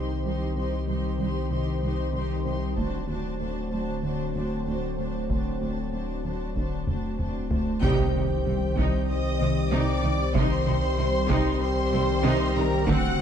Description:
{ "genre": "cinematic, hybrid orchestral and electronic film score", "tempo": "95 BPM", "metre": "4/4", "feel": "straight", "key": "C minor", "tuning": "A4 = 440 Hz", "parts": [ { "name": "warm studio violin section", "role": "second line", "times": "0.0-13.2 s", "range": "Bb4 to C6", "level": "-35 LUFS", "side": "equal", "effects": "none" }, { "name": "clear symphonic viola section", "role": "accompaniment", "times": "0.0-13.2 s", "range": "C4 to G4", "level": "-34 LUFS", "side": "right 1 dB", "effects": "none" }, { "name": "dark French horn section", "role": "sustained chords", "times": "0.0-13.2 s", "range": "Eb3 to G4", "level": "-33 LUFS", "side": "left 3 dB", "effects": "none" }, { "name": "warbly tape-like pad", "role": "sustained chords", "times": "0.0-13.2 s", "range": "D3 to C5", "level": "-33 LUFS", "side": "left 2 dB", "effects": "chorus, built-in reverb" }, { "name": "harp-like synth pluck", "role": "arpeggios", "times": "0.0-13.2 s", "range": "C3 to C4", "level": "-34 LUFS", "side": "left 2 dB", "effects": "chorus, digital delay" }, { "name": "saturated sub bass", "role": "bass", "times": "0.0-13.2 s", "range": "D1 to C2", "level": "-31 LUFS", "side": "equal", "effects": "none" }, { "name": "rich symphonic cello section", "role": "bass", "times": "0.2-13.2 s", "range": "C2 to D3", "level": "-32 LUFS", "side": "right 4 dB", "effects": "none" }, { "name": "solo taiko drums", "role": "drums", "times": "2.8-13.2 s", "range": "none", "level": "-30 LUFS", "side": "equal", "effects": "none" }, { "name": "clear symphonic violin section", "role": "melody", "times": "7.8-13.2 s", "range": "Bb5 to G6", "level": "-34 LUFS", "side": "left 2 dB", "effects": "none" }, { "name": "clear trombone section", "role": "sustained chords", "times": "7.8-13.2 s", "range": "D3 to A3", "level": "-35 LUFS", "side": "right 5 dB", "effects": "none" }, { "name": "rich symphonic double bass section", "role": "bass", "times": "7.8-13.2 s", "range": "C2 to D2", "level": "-31 LUFS", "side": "right 4 dB", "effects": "none" }, { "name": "impact", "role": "sound effects", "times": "7.8-10.4 s", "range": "none", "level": "-33 LUFS", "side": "equal", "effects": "none" } ], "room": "moderate scoring stage reverb, RT60 1.9 s", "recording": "dark, warm production", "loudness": "-24 LUFS", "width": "side -8 dB against mid", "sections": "0.0-7.8 A section; 7.8-13.2 B section", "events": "drum fill 6.9-7.8; band accent 7.8-8.5; impact 7.8-10.4", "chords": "0.0 Cm; 2.8 D7; 7.8 Cm", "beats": "| 0.25 0.88 1.51 2.15 | 2.78 3.41 4.04 4.67 | 5.30 5.93 6.57 7.20 | 7.83 8.46 9.09 9.72 | 10.36 10.99 11.62 12.25 | 12.88" }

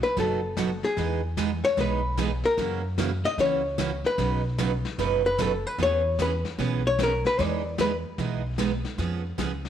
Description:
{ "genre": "country, western swing", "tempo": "150 BPM", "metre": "4/4", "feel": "swing 66% on 8ths", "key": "E major", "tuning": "A4 = 440 Hz", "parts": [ { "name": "archtop guitar, miked and amplified", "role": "melody", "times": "0.0-8.0 s", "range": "G#4 to D#5", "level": "-26 LUFS", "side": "left 3 dB", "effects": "none" }, { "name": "vintage brush drum kit", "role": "drums", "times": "0.0-9.7 s", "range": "brushed snare drum, hi-hat, kick drum, snare drum", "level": "-35 LUFS", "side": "left 6 dB", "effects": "none" }, { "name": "picked steel-string acoustic guitar", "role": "accompaniment", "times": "0.2-9.5 s", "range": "B2 to B4", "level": "-29 LUFS", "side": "right 8 dB", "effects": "none" }, { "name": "upright bass", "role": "bass", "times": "0.2-9.7 s", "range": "F#1 to F#2", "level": "-30 LUFS", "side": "equal", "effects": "none" } ], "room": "moderate plate reverb, RT60 1.4 s, small room ambience", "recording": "1960s-style stereo with parts hard left and right", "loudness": "-23 LUFS", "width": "side -9 dB against mid", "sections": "0.0-9.7 A section", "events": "hollow-body jazz guitar solo 0.0-9.7", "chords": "0.0 B; 1.0 Emaj7; 2.6 F#7; 4.2 Badd9; 5.8 E6; 7.4 Emaj7; 9.0 C#7", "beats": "0.17 0.57 | 0.97 1.37 1.77 2.18 | 2.58 2.98 3.38 3.78 | 4.18 4.58 4.99 5.39 | 5.79 6.19 6.59 6.99 | 7.39 7.79 8.19 8.59 | 8.99 9.39" }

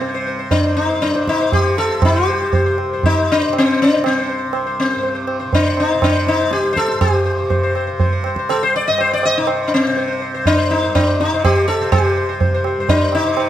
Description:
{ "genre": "indian classical, Hindustani", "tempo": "121 BPM", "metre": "5/4", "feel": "straight", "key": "C raga shivaranjani", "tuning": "A4 = 440 Hz", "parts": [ { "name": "sitar", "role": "melody", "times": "0.0-13.5 s", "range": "C4 to Eb5", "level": "-16 LUFS", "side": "left 2 dB", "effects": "none" }, { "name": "tanpura", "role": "drone", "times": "0.0-13.5 s", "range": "C2 to C3", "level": "-27 LUFS", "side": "right 3 dB", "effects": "none" }, { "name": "tabla", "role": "percussion", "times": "0.0-13.5 s", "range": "none", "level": "-19 LUFS", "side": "right 2 dB", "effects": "none" } ], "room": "moderate recital hall reverb, RT60 1.3 s", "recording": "close, detailed microphones", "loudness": "-14 LUFS", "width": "side -11 dB against mid", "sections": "0.0-13.5 A section", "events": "speeding up 0.0-13.5", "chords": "none", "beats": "0.02 0.52 1.03 1.53 | 2.03 2.53 3.03 3.53 4.03 | 4.53 5.03 5.53 6.02 6.52 | 7.01 7.51 8.00 8.49 8.99 | 9.48 9.97 10.46 10.95 11.44 | 11.92 12.41 12.90 13.38" }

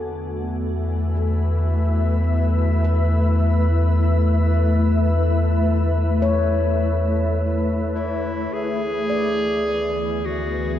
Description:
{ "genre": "ambient", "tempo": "53 BPM", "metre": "4/4", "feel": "straight", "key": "unclear", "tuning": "A4 = 440 Hz", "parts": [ { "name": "glassy FM pad", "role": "sustained chords", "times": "0.0-10.8 s", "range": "E3 to G#5", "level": "-24 LUFS", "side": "left 2 dB", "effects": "ensemble chorus, built-in reverb" }, { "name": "handpan", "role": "arpeggios", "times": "0.0-10.8 s", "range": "A4 to D5", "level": "-30 LUFS", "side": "left 2 dB", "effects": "ping-pong delay" }, { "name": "warm sub bass", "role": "bass", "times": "0.0-10.8 s", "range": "D2 to E2", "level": "-20 LUFS", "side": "equal", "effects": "none" }, { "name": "organ-like drone", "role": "drone", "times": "0.0-10.8 s", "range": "D3 to D4", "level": "-42 LUFS", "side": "equal", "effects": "none" }, { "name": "clear clarinet", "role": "melody", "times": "7.9-10.8 s", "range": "E4 to G#4", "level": "-24 LUFS", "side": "right 1 dB", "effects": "none" } ], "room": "wet cathedral reverb, RT60 6.1 s", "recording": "in a vast, echoing space, nothing above 7.8 kHz", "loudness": "-18 LUFS", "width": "side -11 dB against mid", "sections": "0.0-8.5 A section; 8.5-10.8 B section", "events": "filter sweep on ambient pad 8.5-10.8", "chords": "0.0 E7; 8.5 E7/D", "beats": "0.59 1.71 2.83 | 3.95 5.08 6.21 7.37 | 8.53 9.68" }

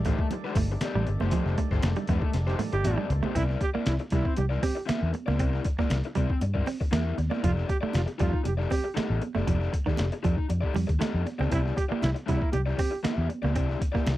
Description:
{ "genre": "funk", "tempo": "118 BPM", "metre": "4/4", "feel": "straight", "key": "unclear", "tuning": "A4 = 440 Hz", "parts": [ { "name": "overdriven tonewheel organ", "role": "sustained chords", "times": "0.0-3.3 s", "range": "Eb3 to D4", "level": "-39 LUFS", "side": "equal", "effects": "slow rotary speaker" }, { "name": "semi-hollow electric guitar", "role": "riff", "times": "0.0-14.0 s", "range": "Eb3 to C4", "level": "-31 LUFS", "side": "right 5 dB", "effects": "vibrato effect" }, { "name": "vintage muted fingered electric bass", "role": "bass", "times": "0.0-14.2 s", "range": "F1 to C3", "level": "-27 LUFS", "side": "equal", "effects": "none" }, { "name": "trip hop sampler-style drum kit", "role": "drums", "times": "0.0-14.2 s", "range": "hi-hat, kick drum, snare drum, toms", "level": "-30 LUFS", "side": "equal", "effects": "none" }, { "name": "raw garage guitar", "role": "accompaniment", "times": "0.1-14.1 s", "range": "A3 to E5", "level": "-33 LUFS", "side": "left 6 dB", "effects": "overdrive" }, { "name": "congas", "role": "percussion", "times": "0.1-14.2 s", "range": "none", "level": "-38 LUFS", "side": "right 5 dB", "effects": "none" }, { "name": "clear trombone", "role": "second line", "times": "2.5-13.0 s", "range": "E4 to G4", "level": "-31 LUFS", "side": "right 4 dB", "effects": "none" } ], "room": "light reverb", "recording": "dry, close 1970s-style studio recording", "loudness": "-25 LUFS", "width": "side -15 dB against mid", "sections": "0.0-3.4 A section; 3.4-14.2 B section", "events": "band accent 1.3-3.4; drum fill 2.3-3.4", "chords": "0.0 F9; 3.4 C9; 7.4 F13; 11.5 C9", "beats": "0.31 0.81 | 1.32 1.83 2.34 2.85 | 3.36 3.87 4.38 4.89 | 5.40 5.91 6.42 6.93 | 7.44 7.95 8.46 8.97 | 9.48 9.99 10.50 11.01 | 11.52 12.03 12.54 13.05 | 13.56 14.07" }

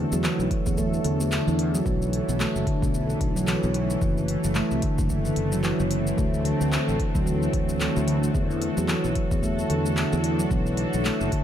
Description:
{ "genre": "organic downtempo", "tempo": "111 BPM", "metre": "4/4", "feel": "swing 58% on 16ths", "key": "unclear", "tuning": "A4 = 439 Hz", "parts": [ { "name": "bowed-like drone", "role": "sustained chords", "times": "0.0-11.4 s", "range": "D3 to A4", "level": "-30 LUFS", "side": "equal", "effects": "built-in reverb, sidechain pumping" }, { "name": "handpan", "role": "arpeggios", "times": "0.0-11.4 s", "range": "D3 to A3", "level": "-25 LUFS", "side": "equal", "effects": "ping-pong delay" }, { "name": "sustaining fretless electric bass", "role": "bass", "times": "0.0-11.3 s", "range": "F#1 to E2", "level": "-27 LUFS", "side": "equal", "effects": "ensemble chorus" }, { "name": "deep house drum kit", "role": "drums", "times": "0.1-11.4 s", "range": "handclaps, hi-hat, shaker", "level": "-33 LUFS", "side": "left 1 dB", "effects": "none" }, { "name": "electronic kick drum", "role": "drums", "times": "0.5-11.4 s", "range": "none", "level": "-27 LUFS", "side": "equal", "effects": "overdrive" } ], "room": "moderate plate reverb, RT60 1.7 s, digital ambience", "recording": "dreamy mix soaked in reverb", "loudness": "-22 LUFS", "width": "side -10 dB against mid", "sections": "0.0-11.4 A section", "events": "none", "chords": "0.0 E9sus4; 1.9 B7sus4; 4.0 F#m7b5; 6.2 D7; 8.3 E9sus4; 10.5 B7sus4", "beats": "0.24 0.78 1.32 | 1.86 2.40 2.94 3.48 | 4.02 4.56 5.10 5.64 | 6.18 6.72 7.26 7.80 | 8.35 8.88 9.43 9.97 | 10.51 11.05" }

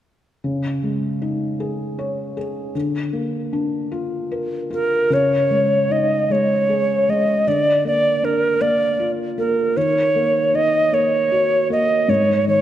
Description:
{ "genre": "children's music, lullaby", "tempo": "52 BPM (dotted quarters)", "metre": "6/8", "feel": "rubato", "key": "Db major pentatonic", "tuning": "A4 = 440 Hz", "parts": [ { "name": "felt-muted upright piano", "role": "accompaniment", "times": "0.4-12.6 s", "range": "Ab2 to Db5", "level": "-22 LUFS", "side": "left 1 dB", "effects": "none" }, { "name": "bright reedy alto ocarina", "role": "melody", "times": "4.7-12.6 s", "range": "Bb4 to Eb5", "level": "-16 LUFS", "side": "right 1 dB", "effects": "none" } ], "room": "moderate concert hall reverb, RT60 2.1 s", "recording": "lossy compression artefacts", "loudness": "-17 LUFS", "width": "side -11 dB against mid", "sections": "0.4-5.1 A section; 5.1-12.6 B section", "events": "none", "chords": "0.4 Dbsus2; 2.7 Bb/D; 5.1 Dbsus2; 7.5 Bb/D; 9.8 Ebm; 12.1 Ab5", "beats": "| 0.43 1.60 | 2.75 3.92 | 5.11 6.30 | 7.46 8.61 | 9.76 10.93 | 12.09" }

